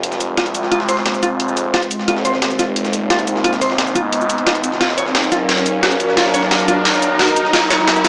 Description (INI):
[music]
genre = dark technical drum and bass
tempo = 176 BPM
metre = 4/4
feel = straight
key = F phrygian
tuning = A4 = 442 Hz
[part]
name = sweeping resonant pad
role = sustained chords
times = 0.0-8.1 s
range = Gb3 to F5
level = -23 LUFS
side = equal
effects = chorus
[part]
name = phased detuned saw bass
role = bass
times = 0.0-8.1 s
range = Eb1 to C2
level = -25 LUFS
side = equal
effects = phaser, overdrive, high-pass filter
[part]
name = breakbeat sampler-style drum kit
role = drums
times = 0.0-8.1 s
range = hi-hat, snare drum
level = -26 LUFS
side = equal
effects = high-pass filter on hats, studio reverb, high-pass filter on snare
[part]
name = dubstep drum kit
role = drums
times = 0.0-8.1 s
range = cabasa, hi-hat, snare drum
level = -22 LUFS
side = equal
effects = overdrive, high-pass filter on hats, studio reverb, high-pass filter on snare, high-pass filter on perc
[part]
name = riser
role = sound effects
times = 1.9-8.1 s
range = none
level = -25 LUFS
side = equal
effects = none
[part]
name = mellow electric guitar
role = arpeggios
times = 0.4-8.1 s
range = F4 to Db5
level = -22 LUFS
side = equal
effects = low-pass filter, dub echo
[sound]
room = moderate plate reverb, RT60 2.4 s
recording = small speaker sound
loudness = -16 LUFS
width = mono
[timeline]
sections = 0.0-8.1 A section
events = build-up 0.0-8.1; filter sweep on analog synth pad 0.0-8.1; riser 1.9-8.1; drum fill 4.8-8.1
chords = 0.0 Fm; 4.8 Ebmadd9